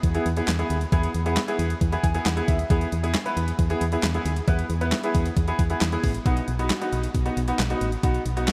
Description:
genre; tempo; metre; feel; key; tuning
synth-pop; 135 BPM; 4/4; straight; E major; A4 = 440 Hz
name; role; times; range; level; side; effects
solid FM bass; bass; 0.0-8.5 s; A1 to E2; -28 LUFS; equal; none
clean 12-bit digital drum machine; drums; 0.0-8.5 s; handclaps, hi-hat, kick drum, snare drum; -28 LUFS; equal; overdrive
clear baby grand piano; accompaniment; 0.1-8.5 s; B3 to G#5; -29 LUFS; equal; subtle chorus
room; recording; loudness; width
moderate huge ambient reverb, RT60 9.1 s; dreamy mix soaked in reverb; -24 LUFS; mono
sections
0.0-8.5 A section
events
grand piano fill 1.8-2.7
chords
0.0 E; 6.3 B

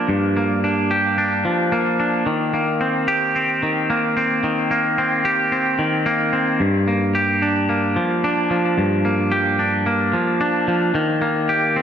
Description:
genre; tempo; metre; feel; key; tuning
rock; 111 BPM; 4/4; straight; G minor; A4 = 440 Hz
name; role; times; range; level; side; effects
twangy electric guitar; solo; 0.0-11.8 s; G2 to G4; -17 LUFS; equal; ping-pong delay
room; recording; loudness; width
wet plate reverb, RT60 2.4 s; dreamy mix soaked in reverb; -17 LUFS; side -8 dB against mid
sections
0.0-6.6 A section; 6.6-11.8 B section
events
build-up 6.6-11.8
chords
0.0 Gm7; 2.3 Eb6; 6.6 Gm7; 10.9 Eb

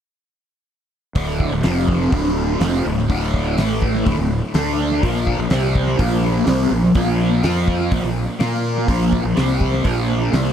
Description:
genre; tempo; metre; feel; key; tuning
psychedelic rock; 124 BPM; 4/4; straight; unclear; A4 = 441 Hz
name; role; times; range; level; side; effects
fuzz guitar; riff; 1.2-10.5 s; D2 to Bb4; -18 LUFS; equal; distortion, phaser, tape echo
fuzz fingered electric bass; bass; 1.2-10.5 s; D1 to Bb2; -22 LUFS; equal; overdrive
damped 70s drum kit; drums; 1.2-10.5 s; hi-hat, kick drum, snare drum; -23 LUFS; equal; tape echo
room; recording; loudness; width
light reverb, studio reverb; echo-heavy mix; -16 LUFS; side -9 dB against mid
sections
1.2-10.5 A section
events
none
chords
1.2 D5; 1.6 F5; 2.1 Dm; 3.6 A5; 4.1 D5; 5.0 Bb5; 5.5 C5; 6.0 Bb5; 7.4 F5; 7.9 Bb5; 9.4 C5; 9.9 Bb5

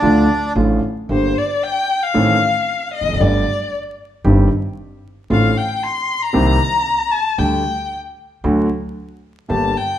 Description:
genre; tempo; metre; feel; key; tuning
tango; 114 BPM; 4/4; rubato; G minor; A4 = 439 Hz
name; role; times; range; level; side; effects
bandoneon; melody; 0.0-0.5 s; D4 to D5; -19 LUFS; right 2 dB; none
warm violin; second line; 0.0-10.0 s; D4 to C6; -19 LUFS; left 3 dB; none
warm grand piano; accompaniment; 0.0-9.7 s; G1 to A4; -18 LUFS; right 1 dB; none
upright bass; bass; 0.0-9.7 s; E1 to D2; -20 LUFS; equal; none
room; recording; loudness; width
wet large studio reverb, RT60 1.2 s; minimal, uncompressed stereo recording, vinyl crackle; -15 LUFS; side -11 dB against mid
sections
0.0-1.1 A section; 1.1-10.0 B section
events
violin solo 1.1-10.0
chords
0.0 Dm; 1.1 Gm; 2.1 Adim; 3.2 Gsus2; 4.3 Cm/G; 5.3 F6/A; 6.3 Cm7; 7.4 Dsus4; 8.4 D

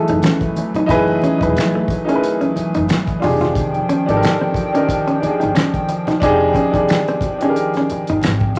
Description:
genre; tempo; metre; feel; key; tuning
R&B, neo-soul; 90 BPM; 4/4; swing 56% on 16ths; unclear; A4 = 440 Hz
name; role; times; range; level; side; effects
warm upright piano; accompaniment; 0.0-8.6 s; D4 to Cb5; -21 LUFS; equal; none
hollow soft pad; sustained chords; 0.0-8.6 s; Eb3 to G5; -25 LUFS; equal; chorus
hollow-body jazz guitar; second line; 0.1-8.3 s; A3 to F4; -24 LUFS; equal; none
upright bass; bass; 0.1-8.5 s; Fb1 to Ab1; -26 LUFS; equal; none
cloth-damped thuddy drum kit; drums; 0.1-8.6 s; finger snaps, hi-hat, kick drum, snare drum; -23 LUFS; equal; none
congas; percussion; 0.2-8.6 s; none; -33 LUFS; equal; none
room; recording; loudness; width
moderate large studio reverb, RT60 0.8 s; none; -17 LUFS; mono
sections
0.0-8.6 A section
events
none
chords
0.0 Gbm9; 3.2 Fm9

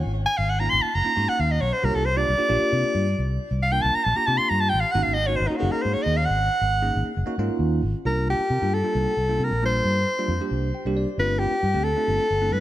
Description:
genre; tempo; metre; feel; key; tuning
electric jazz fusion; 270 BPM (eighths); 7/8; straight; C dorian; A4 = 437 Hz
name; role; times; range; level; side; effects
fingered electric bass; bass; 0.1-12.6 s; Gb1 to C3; -25 LUFS; equal; none
warm soprano saxophone; melody; 0.3-12.6 s; Eb4 to C6; -23 LUFS; equal; none
bell-like tine electric piano; accompaniment; 0.6-12.6 s; G3 to G5; -29 LUFS; right 2 dB; phaser
room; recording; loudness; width
moderate plate reverb, RT60 2.7 s; bright 1980s-style digital production; -20 LUFS; side -13 dB against mid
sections
0.0-8.1 A section; 8.1-12.6 B section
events
soprano saxophone solo 0.0-8.1; tine electric piano fill 10.5-11.2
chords
0.0 Ab9sus4; 1.8 C9sus4; 4.9 Ab9sus4; 8.1 C9sus4; 11.2 G9sus4

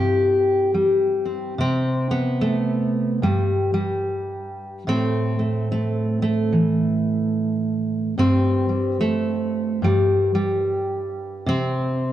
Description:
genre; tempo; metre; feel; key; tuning
folk, solo fingerstyle acoustic guitar; 73 BPM; 4/4; swing 61% on 8ths; C major; A4 = 437 Hz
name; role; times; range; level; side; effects
fingerpicked steel-string acoustic guitar; solo; 0.0-12.1 s; G2 to G4; -19 LUFS; equal; none
room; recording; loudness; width
moderate scoring stage reverb, RT60 1.8 s; dark, warm production; -19 LUFS; side -12 dB against mid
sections
0.0-1.6 A section; 1.6-12.1 B section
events
none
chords
0.0 C; 1.6 C5; 4.9 Am; 8.2 N.C.; 11.5 C5

